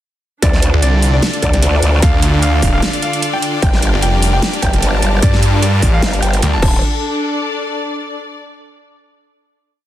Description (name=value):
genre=heavy wobble dubstep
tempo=150 BPM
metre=4/4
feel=swing 55% on 16ths, half-time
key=D minor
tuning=A4 = 440 Hz
part: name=bright grand piano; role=melody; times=0.4-6.8 s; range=D5 to A5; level=-22 LUFS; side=left 1 dB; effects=ping-pong delay
part: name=supersaw chords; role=sustained chords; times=0.4-6.8 s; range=D3 to Bb4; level=-22 LUFS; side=equal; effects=sidechain pumping
part: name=growl bass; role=bass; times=0.4-6.8 s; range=D1 to D2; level=-15 LUFS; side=equal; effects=chorus, overdrive
part: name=dubstep drum kit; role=drums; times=0.4-6.7 s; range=crash cymbal, hi-hat, snare drum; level=-21 LUFS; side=right 1 dB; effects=studio ambience
part: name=electronic kick drum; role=drums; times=0.4-6.7 s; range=none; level=-16 LUFS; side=equal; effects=distortion, studio ambience
part: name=rich studio string section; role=texture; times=0.4-8.4 s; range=D4 to A5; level=-22 LUFS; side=left 1 dB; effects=sidechain pumping
part: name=snarling distorted saw bass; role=bass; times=0.7-6.6 s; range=Eb1 to G2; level=-14 LUFS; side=equal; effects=distortion, overdrive
room=light reverb, digital ambience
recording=dense, heavily limited modern master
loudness=-12 LUFS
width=side -13 dB against mid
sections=0.4-6.8 drop; 6.8-8.4 final note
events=drop 0.4-6.8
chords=0.4 Dm; 3.6 Gm7; 6.6 Dm; 6.8 D5